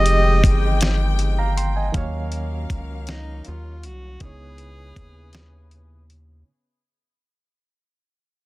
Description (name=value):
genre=slow six-eight R&B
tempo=53 BPM (dotted quarters)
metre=6/8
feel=straight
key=unclear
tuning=A4 = 440 Hz
part: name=mellow tenor saxophone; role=melody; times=0.0-6.1 s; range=Eb4 to Eb5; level=-25 LUFS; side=equal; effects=tape echo
part: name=barky reed electric piano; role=accompaniment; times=0.0-6.5 s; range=Db3 to C6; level=-27 LUFS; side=right 5 dB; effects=overdrive, fast tremolo
part: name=warm studio string section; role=sustained chords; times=0.0-6.5 s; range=Db3 to G5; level=-32 LUFS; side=left 1 dB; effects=none
part: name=warm horn section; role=stabs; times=0.0-6.1 s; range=Gb3 to Cb5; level=-34 LUFS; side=left 6 dB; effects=tape echo
part: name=rubbery square bass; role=bass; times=0.0-6.4 s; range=F1 to Eb2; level=-22 LUFS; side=equal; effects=none
part: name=dusty soul sampler-style drum kit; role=drums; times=0.1-6.3 s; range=hi-hat, kick drum, snare drum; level=-21 LUFS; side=equal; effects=none
room=little or no reverb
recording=dense, heavily limited modern master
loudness=-18 LUFS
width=side -20 dB against mid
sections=0.0-6.5 A section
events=fade-out 0.0-6.5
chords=0.0 Fm9; 1.9 Ebm9; 4.2 Dbm9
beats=0.81 | 1.94 3.07 | 4.21 5.34